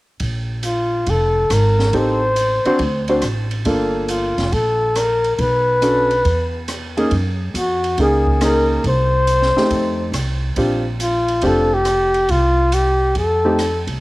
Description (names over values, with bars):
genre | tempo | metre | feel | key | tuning
jazz, small-group swing and bop | 139 BPM | 4/4 | swing 67% on 8ths | Bb major | A4 = 436 Hz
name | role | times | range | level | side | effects
upright bass | bass | 0.2-14.0 s | F1 to Gb2 | -20 LUFS | equal | none
open jazz drum kit | drums | 0.2-13.9 s | hi-hat, kick drum, ride cymbal, rim click, snare drum | -27 LUFS | right 1 dB | cassette tape
mellow flugelhorn | melody | 0.6-13.9 s | F4 to C5 | -18 LUFS | left 1 dB | none
warm grand piano | accompaniment | 1.9-13.6 s | A3 to C5 | -19 LUFS | equal | none
room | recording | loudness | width
light reverb, studio reverb | home recording on cassette | -15 LUFS | side -19 dB against mid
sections
0.2-14.0 A section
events
none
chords
0.2 Bb5; 1.9 Am7b5; 2.8 D7; 3.7 Gm9; 5.4 Bm7; 6.3 E; 7.1 Gb6; 8.8 Cm; 9.7 F7; 10.6 Bb69; 12.3 C5; 13.2 F7